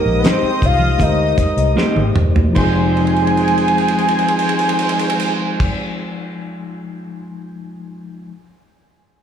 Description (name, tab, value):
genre	lush 1970s-style soul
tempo	74-82 BPM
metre	4/4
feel	straight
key	F minor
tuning	A4 = 440 Hz
part	fat analog lead	melody	0.0-5.7 s	Bb4 to Ab5	-19 LUFS	equal	analog delay
part	warm studio violin section	second line	0.0-5.7 s	Ab3 to G6	-27 LUFS	left 1 dB	analog delay
part	mellow tine electric piano	accompaniment	0.0-8.3 s	F3 to C5	-22 LUFS	left 4 dB	medium stereo tremolo
part	vintage muted fingered electric bass	bass	0.1-5.7 s	E1 to D2	-19 LUFS	equal	none
part	electric guitar through a small old amp	riff	0.2-6.1 s	Eb3 to G4	-22 LUFS	right 4 dB	spring reverb
part	damped 70s drum kit	drums	0.2-7.3 s	crash cymbal, hi-hat, kick drum, ride cymbal, snare drum, toms	-20 LUFS	equal	none
part	congas	percussion	0.2-5.7 s	none	-24 LUFS	right 4 dB	none
room	light reverb, small room ambience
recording	studio reverb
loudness	-13 LUFS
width	side -8 dB against mid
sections	0.0-2.6 A section; 2.6-5.8 B section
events	slowing down 0.0-2.6; drum fill 1.8-2.6, 3.0-5.6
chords	0.0 Abmaj7; 2.6 Fm9